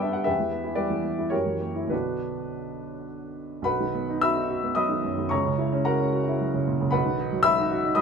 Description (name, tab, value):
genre	classical, romantic character piece for solo piano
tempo	98-123 BPM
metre	3/4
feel	rubato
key	B minor, B major from 3.7 s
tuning	A4 = 440 Hz
part	warm baby grand piano	solo	0.0-8.0 s	B1 to E6	-23 LUFS	equal	none
room	moderate studio reverb, RT60 0.8 s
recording	minimal, uncompressed stereo recording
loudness	-23 LUFS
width	side -6 dB against mid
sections	0.0-3.7 A section; 3.7-8.0 B section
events	none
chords	0.3 Em7; 1.3 F#7b9; 1.9 Bm; 3.7 B; 5.3 F#7/C#; 6.9 B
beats	| 0.28 0.78 1.32 | 1.92 2.51 3.08 | 3.66 4.23 4.77 | 5.31 5.86 6.41 | 6.93 7.45 7.97